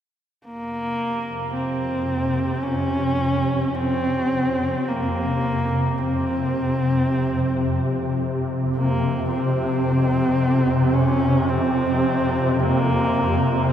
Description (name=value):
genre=dark ambient drone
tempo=free time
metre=none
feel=none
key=unclear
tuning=A4 = 440 Hz
part: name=swarming drone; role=drone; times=0.9-13.7 s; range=F2 to C3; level=-22 LUFS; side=equal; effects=built-in reverb, ensemble chorus
part: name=warm horsehead fiddle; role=melody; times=0.5-13.7 s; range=Bb3 to Db4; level=-23 LUFS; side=equal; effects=tape echo
room=wet huge ambient reverb, RT60 9.3 s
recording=dreamy mix soaked in reverb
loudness=-19 LUFS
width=side -9 dB against mid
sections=0.4-13.7 A section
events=none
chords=0.4 F5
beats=free time